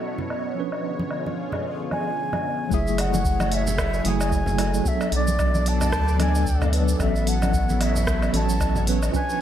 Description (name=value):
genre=sunset chillout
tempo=112 BPM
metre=4/4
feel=swing 57% on 16ths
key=F# minor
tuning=A4 = 439 Hz
part: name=tine electric piano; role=accompaniment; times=0.0-9.4 s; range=E#3 to B4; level=-28 LUFS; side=moving between left 5 dB and right 7 dB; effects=medium stereo tremolo, auto-pan
part: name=lush unison pad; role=sustained chords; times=0.0-9.4 s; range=D3 to D5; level=-31 LUFS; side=equal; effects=chorus, phaser
part: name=congas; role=percussion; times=0.2-8.8 s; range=none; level=-31 LUFS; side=right 1 dB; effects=none
part: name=smooth R&B drum kit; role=drums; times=0.3-9.4 s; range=hi-hat, rim click, shaker, woodblock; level=-30 LUFS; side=equal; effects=low-pass filter on perc, low-pass filter on hats, low-pass filter on snare, low-pass filter on room
part: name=baroque flute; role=melody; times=1.9-9.4 s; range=D5 to A5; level=-28 LUFS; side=equal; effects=tape echo
part: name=round analog bass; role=bass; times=2.7-9.1 s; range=F#1 to D2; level=-23 LUFS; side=equal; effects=none
part: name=electronic kick drum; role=drums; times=2.7-9.3 s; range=none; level=-27 LUFS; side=equal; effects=none
room=light reverb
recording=none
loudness=-20 LUFS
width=side -10 dB against mid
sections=0.0-2.7 A section; 2.7-9.4 B section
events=filter sweep on tine electric piano 0.0-2.7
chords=0.0 A69; 0.6 C#7b9; 2.7 F#m9; 4.9 Bm7; 7.0 A69